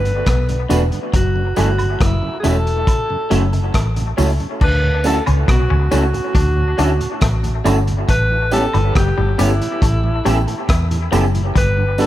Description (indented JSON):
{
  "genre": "lovers rock reggae",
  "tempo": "69 BPM",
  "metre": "4/4",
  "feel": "straight",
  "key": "unclear",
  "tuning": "A4 = 441 Hz",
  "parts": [
    { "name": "warm alto saxophone", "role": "melody", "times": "0.0-12.1 s", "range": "E4 to B4", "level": "-22 LUFS", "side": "equal", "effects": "tape echo" },
    { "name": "twangy electric guitar", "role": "riff", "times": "0.0-11.8 s", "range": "E3 to E4", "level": "-26 LUFS", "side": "left 8 dB", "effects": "spring reverb, dub echo" },
    { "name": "vintage muted fingered electric bass", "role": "bass", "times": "0.0-12.1 s", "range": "E1 to E2", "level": "-17 LUFS", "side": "equal", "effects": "none" },
    { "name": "mellow tonewheel organ", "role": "accompaniment", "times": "0.1-12.1 s", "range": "D2 to F#4", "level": "-27 LUFS", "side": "right 4 dB", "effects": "slow rotary speaker" },
    { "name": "crunchy breakbeat drum kit", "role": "drums", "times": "0.1-12.1 s", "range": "crash cymbal, hi-hat, kick drum, rim click", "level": "-19 LUFS", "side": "equal", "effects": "none" },
    { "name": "tine electric piano", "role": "accompaniment", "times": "0.7-12.1 s", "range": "A3 to A4", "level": "-25 LUFS", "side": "equal", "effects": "auto-pan, dub echo" },
    { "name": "electric guitar through a small old amp", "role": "stabs", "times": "0.7-12.1 s", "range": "C#4 to B4", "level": "-25 LUFS", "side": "right 2 dB", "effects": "analog chorus, dub echo" },
    { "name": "tambourine and woodblock", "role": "percussion", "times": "0.7-12.1 s", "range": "none", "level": "-30 LUFS", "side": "right 4 dB", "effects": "none" }
  ],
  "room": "studio ambience",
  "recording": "none",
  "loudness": "-14 LUFS",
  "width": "side -14 dB against mid",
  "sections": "0.0-4.6 A section; 4.6-12.1 B section",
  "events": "none",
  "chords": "0.0 Gmaj7; 1.1 F#m7; 4.6 Dmaj7; 8.1 A7; 11.6 Gmaj7"
}